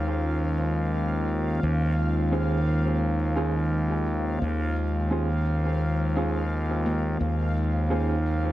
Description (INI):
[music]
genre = ambient dub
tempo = 86 BPM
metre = 4/4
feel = swing 55% on 16ths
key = unclear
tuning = A4 = 440 Hz
[part]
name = warm analog pad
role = sustained chords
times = 0.0-8.5 s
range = Eb3 to C5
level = -29 LUFS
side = equal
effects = chorus
[part]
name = fuzz fingered electric bass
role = bass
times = 0.0-8.5 s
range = Eb2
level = -25 LUFS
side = equal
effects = overdrive
[part]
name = bubbling stepped-filter texture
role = texture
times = 0.0-8.5 s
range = F5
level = -37 LUFS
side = left 1 dB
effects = chorus, built-in reverb
[part]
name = cabasa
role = drums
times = 0.6-8.4 s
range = none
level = -67 LUFS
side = left 1 dB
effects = none
[part]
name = mellow electric guitar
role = stabs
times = 2.3-8.1 s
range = Db4 to C5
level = -34 LUFS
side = right 3 dB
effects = dub echo
[part]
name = handpan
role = arpeggios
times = 6.9-8.5 s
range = Bb3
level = -34 LUFS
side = left 2 dB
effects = tape echo
[sound]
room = studio reverb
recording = dark, warm production, vinyl crackle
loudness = -23 LUFS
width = side -15 dB against mid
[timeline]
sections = 0.0-8.5 A section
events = none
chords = 0.0 Eb13sus4